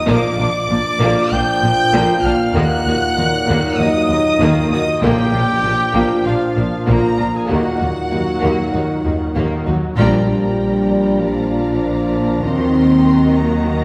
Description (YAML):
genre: cinematic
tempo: 97 BPM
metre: 4/4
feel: straight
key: unclear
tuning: A4 = 440 Hz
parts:
  - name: rich symphonic violin section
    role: melody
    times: 0.0-13.8 s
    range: F5 to G6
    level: -28 LUFS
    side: equal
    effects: none
  - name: clear trombone section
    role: sustained chords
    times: 0.0-13.8 s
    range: Bb2 to Eb4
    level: -26 LUFS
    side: equal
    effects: none
  - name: dark trumpet section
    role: stabs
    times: 0.0-9.7 s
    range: F4 to G5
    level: -23 LUFS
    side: equal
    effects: none
  - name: rich symphonic violin section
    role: second line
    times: 0.1-13.8 s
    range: Bb3 to Bb5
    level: -28 LUFS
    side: equal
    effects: none
  - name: warm symphonic viola section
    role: accompaniment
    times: 0.1-13.8 s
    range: Eb3 to Bb4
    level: -26 LUFS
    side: equal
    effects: none
  - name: dark French horn section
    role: sustained chords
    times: 0.1-13.8 s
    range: F3 to Eb4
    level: -22 LUFS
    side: equal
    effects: none
  - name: rich symphonic cello section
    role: bass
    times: 0.1-13.8 s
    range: Eb2 to Eb3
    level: -25 LUFS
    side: equal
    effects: none
  - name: rich symphonic double bass section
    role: bass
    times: 0.1-13.8 s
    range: Bb1 to Eb2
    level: -24 LUFS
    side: equal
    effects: none
  - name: timpani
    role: percussion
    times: 5.0-5.9 s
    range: Bb2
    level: -26 LUFS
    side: equal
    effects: none
room: wet scoring stage reverb, RT60 1.6 s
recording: heard from further back in the room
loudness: -16 LUFS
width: mono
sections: 0.0-10.0 A section; 10.0-13.8 A section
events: band accent 10.0-10.6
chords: 0.1 Bb; 2.6 Ebm; 5.0 Bb; 7.5 Ebm; 10.0 Bb; 12.4 Ebm